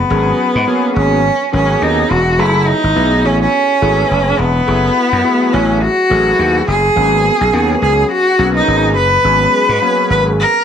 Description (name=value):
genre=early-eighties boogie funk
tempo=105 BPM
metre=4/4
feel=swing 56% on 16ths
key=G# minor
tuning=A4 = 442 Hz
part: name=clear cello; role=melody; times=0.0-10.6 s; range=B3 to B4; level=-13 LUFS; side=equal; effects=none
part: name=gritty slap bass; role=bass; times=0.0-10.4 s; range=E1 to G#2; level=-16 LUFS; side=equal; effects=overdrive
part: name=chorused polysynth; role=accompaniment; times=0.1-10.3 s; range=F#3 to A#4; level=-18 LUFS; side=left 1 dB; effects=none
room=moderate large studio reverb, RT60 1.2 s, small room ambience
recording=none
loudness=-10 LUFS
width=side -8 dB against mid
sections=0.0-10.6 A section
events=none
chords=0.0 G#m11; 2.4 F#m11; 7.0 G#m11